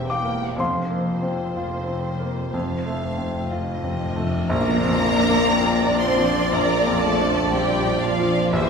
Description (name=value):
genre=classical, romantic movement for piano and orchestra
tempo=61 BPM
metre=4/4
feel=rubato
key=Bb major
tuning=A4 = 439 Hz
part: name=clear grand piano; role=melody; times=0.0-8.7 s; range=Bb1 to E6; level=-25 LUFS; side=left 1 dB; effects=none
part: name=rich symphonic violin section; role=melody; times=0.0-8.7 s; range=C5 to C6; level=-29 LUFS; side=equal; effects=none
part: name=warm symphonic violin section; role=second line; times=0.0-8.7 s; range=E4 to G5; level=-30 LUFS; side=left 3 dB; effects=none
part: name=rich symphonic viola section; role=accompaniment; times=0.0-8.7 s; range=A3 to D5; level=-29 LUFS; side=right 2 dB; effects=none
part: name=clear symphonic double bass section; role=bass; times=0.0-8.7 s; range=E1 to Bb1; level=-30 LUFS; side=right 2 dB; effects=none
part: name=rich symphonic cello section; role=bass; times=0.0-8.7 s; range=E2 to C4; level=-29 LUFS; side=right 2 dB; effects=none
part: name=cymbal swell and tam-tam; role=percussion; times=0.6-8.5 s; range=none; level=-33 LUFS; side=equal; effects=none
part: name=timpani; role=percussion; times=0.6-8.7 s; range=F2 to Bb2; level=-31 LUFS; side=left 2 dB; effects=none
part: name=flute section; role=second line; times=4.5-8.7 s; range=C5 to D5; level=-29 LUFS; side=left 4 dB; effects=none
part: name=warm clarinet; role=second line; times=4.5-8.7 s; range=F4 to G4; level=-32 LUFS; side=right 1 dB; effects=none
part: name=warm bassoon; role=accompaniment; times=4.5-8.7 s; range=E3 to F3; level=-29 LUFS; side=right 3 dB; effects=none
part: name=bright trombone section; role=sustained chords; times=4.5-8.7 s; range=E3 to D4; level=-30 LUFS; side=right 4 dB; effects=none
part: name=dark French horn section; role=sustained chords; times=4.5-8.7 s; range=E3 to C4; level=-27 LUFS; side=left 6 dB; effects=none
room=wet recital hall reverb, RT60 1.6 s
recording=recorded in a church or concert hall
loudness=-19 LUFS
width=side -6 dB against mid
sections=0.0-4.5 A section; 4.5-8.7 B section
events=timpani fill 2.5-4.5; band accent 4.5-5.5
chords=0.0 C7/E; 0.6 Fsus4; 2.5 F; 4.5 Bb